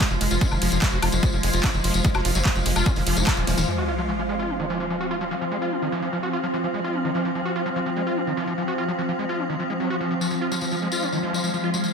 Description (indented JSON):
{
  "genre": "psychedelic trance",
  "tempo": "147 BPM",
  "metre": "4/4",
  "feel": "straight",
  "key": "F minor",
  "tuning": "A4 = 440 Hz",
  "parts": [
    { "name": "swarming drone", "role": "sustained chords", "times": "0.0-11.9 s", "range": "F3 to C4", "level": "-27 LUFS", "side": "equal", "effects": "built-in reverb, sidechain pumping" },
    { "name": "screaming distorted acid line", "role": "riff", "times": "0.0-11.9 s", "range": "Eb3 to Gb4", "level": "-28 LUFS", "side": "equal", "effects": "distortion, chorus, auto-pan, sidechain pumping, diffuse ambient delay" },
    { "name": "big-room dance drum kit", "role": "drums", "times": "0.0-3.7 s", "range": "handclaps, hi-hat, ride cymbal, snare drum, woodblock", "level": "-27 LUFS", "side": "left 1 dB", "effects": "none" },
    { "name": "electronic kick drum", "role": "drums", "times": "0.0-3.4 s", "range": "none", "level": "-22 LUFS", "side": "equal", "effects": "none" },
    { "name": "tambourine", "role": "percussion", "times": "0.0-3.7, 10.2-11.9 s", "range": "none", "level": "-31 LUFS", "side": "left 4 dB", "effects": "none" },
    { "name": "granular cloud pad", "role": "texture", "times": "0.0-11.9 s", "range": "F4 to F5", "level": "-30 LUFS", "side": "equal", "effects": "built-in reverb, analog chorus, sidechain pumping" },
    { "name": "tight sequencer bass", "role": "bass", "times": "0.1-3.6 s", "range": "Eb1 to Gb1", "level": "-24 LUFS", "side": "equal", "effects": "none" },
    { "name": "sub drop", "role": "sound effects", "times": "3.7-5.3 s", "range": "none", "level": "-32 LUFS", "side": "equal", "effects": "none" }
  ],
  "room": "moderate plate reverb, RT60 1.2 s, digital ambience",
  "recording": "dreamy mix soaked in reverb",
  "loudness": "-21 LUFS",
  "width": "side -6 dB against mid",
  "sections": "0.0-3.7 A section; 3.7-11.9 B section",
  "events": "drop 0.0-3.7; drum fill 3.5; impact 3.7-5.3",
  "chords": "0.0 F5",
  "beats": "0.01 | 0.41 0.82 1.23 1.64 | 2.05 2.45 2.86 3.27 | 3.68 4.09 4.50 4.90 | 5.31 5.72 6.13 6.54 | 6.94 7.35 7.76 8.17 | 8.58 8.98 9.39 9.80 | 10.21 10.62 11.03 11.43 | 11.84"
}